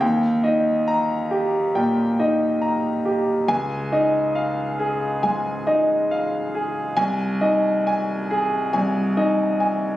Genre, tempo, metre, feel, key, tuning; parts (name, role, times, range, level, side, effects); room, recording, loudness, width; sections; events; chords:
neoclassical minimalist piano; 69 BPM; 4/4; rubato; Ab major; A4 = 440 Hz
clear grand piano; solo; 0.0-10.0 s; C2 to Bb5; -19 LUFS; equal
little or no reverb; recorded on a phone in the room, studio reverb; -19 LUFS; side -14 dB against mid
0.0-10.0 A section
0.0 Eb; 3.5 Dbadd9; 7.0 Ab/C